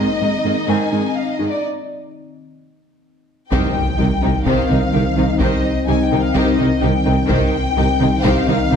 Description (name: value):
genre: cinematic, hybrid orchestral and electronic film score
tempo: 127 BPM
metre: 4/4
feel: straight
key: C minor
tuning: A4 = 440 Hz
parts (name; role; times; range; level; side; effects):
- warm symphonic violin section; melody; 0.0-8.8 s; D5 to Ab5; -24 LUFS; left 4 dB; none
- warm symphonic violin section; second line; 0.0-8.8 s; C4 to Eb5; -24 LUFS; left 4 dB; none
- rich symphonic viola section; accompaniment; 0.0-8.8 s; Eb3 to Eb4; -25 LUFS; right 2 dB; none
- dark analog pad; sustained chords; 0.0-8.8 s; Eb3 to Eb5; -25 LUFS; left 4 dB; chorus, phaser
- tight sequenced synth; arpeggios; 0.0-8.8 s; C3 to Ab4; -25 LUFS; right 1 dB; chorus, ping-pong delay
- rich symphonic cello section; bass; 0.0-8.8 s; Ab2 to C3; -24 LUFS; right 3 dB; none
- mellow French horn section; sustained chords; 3.5-8.8 s; C4 to Eb4; -23 LUFS; left 3 dB; none
- dark tuba; bass; 3.5-8.8 s; C2; -24 LUFS; right 4 dB; none
- rich symphonic double bass section; bass; 3.5-8.8 s; C2; -25 LUFS; right 3 dB; none
- warm sub bass; bass; 3.5-8.8 s; C2; -24 LUFS; equal; none
- taiko ensemble; drums; 3.5-8.7 s; none; -26 LUFS; left 1 dB; none
- impact; sound effects; 3.5-5.4 s; none; -27 LUFS; equal; none
room: wet recital hall reverb, RT60 1.3 s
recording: dark, warm production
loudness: -15 LUFS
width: side -7 dB against mid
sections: 0.0-3.5 A section; 3.5-8.8 B section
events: break 1.6-3.5; impact 3.5-5.4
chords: 0.0 Ab; 1.6 N.C.; 3.5 Cm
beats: 0.21 0.68 1.16 | 1.63 2.10 2.57 3.05 | 3.52 3.99 4.46 4.93 | 5.41 5.88 6.35 6.83 | 7.30 7.77 8.24 8.71